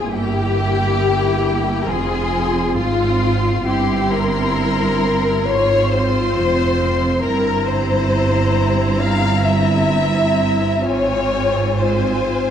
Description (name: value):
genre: classical, slow romantic movement for string orchestra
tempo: 67 BPM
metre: 4/4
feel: uneven beats, rubato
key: F minor from 3.7 s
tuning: A4 = 439 Hz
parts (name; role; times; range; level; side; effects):
- rich studio violin section; melody; 0.0-12.5 s; G5 to C6; -27 LUFS; left 5 dB; none
- rich studio violin section; second line; 0.0-12.5 s; F4 to F5; -19 LUFS; left 3 dB; none
- rich studio viola section; accompaniment; 0.0-12.5 s; Bb3 to F4; -22 LUFS; right 1 dB; none
- clear studio double bass section; bass; 0.0-12.5 s; F1 to Ab1; -23 LUFS; right 3 dB; none
- rich studio cello section; bass; 0.0-12.5 s; F2 to Ab2; -22 LUFS; right 3 dB; none
room: wet concert hall reverb, RT60 1.9 s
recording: dark, warm production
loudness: -15 LUFS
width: side -9 dB against mid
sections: 0.0-12.5 A section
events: none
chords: 0.1 Edim/G; 1.9 Fm; 3.7 C7/G; 5.5 Fm/Ab; 7.3 C7/G; 10.8 Fm/Ab